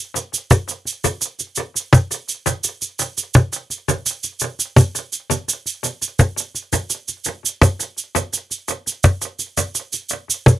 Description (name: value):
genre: reggae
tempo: 84 BPM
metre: 4/4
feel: straight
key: none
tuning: none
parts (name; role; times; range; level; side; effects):
- cajon; drums; 0.2-10.6 s; none; -14 LUFS; equal; tape echo
- cabasa; percussion; 0.2-10.6 s; none; -22 LUFS; right 5 dB; none
room: light reverb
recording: dry, close 1970s-style studio recording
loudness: -18 LUFS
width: side -14 dB against mid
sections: 0.0-10.6 A section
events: none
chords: none